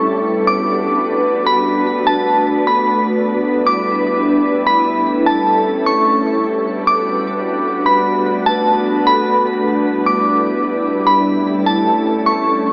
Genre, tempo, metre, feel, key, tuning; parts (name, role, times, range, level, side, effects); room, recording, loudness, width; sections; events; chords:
hip hop; 150 BPM; 4/4; half-time; E dorian; A4 = 439 Hz
glassy synth bell; melody; 0.0-12.7 s; A5 to D6; -16 LUFS; equal; chorus, phaser, low-pass filter, tape echo
glassy FM pad; sustained chords; 0.0-12.7 s; G3 to B4; -15 LUFS; equal; ensemble chorus, built-in reverb
wet shimmer reverb, RT60 5.5 s; AM radio sound; -13 LUFS; side -32 dB against mid
0.0-3.3 A section; 3.3-12.7 B section
0.1 Gmaj7; 1.7 Bm7; 3.3 Em7; 4.9 A7; 6.5 Gmaj7; 8.1 Bm7; 9.7 Em7; 11.3 A7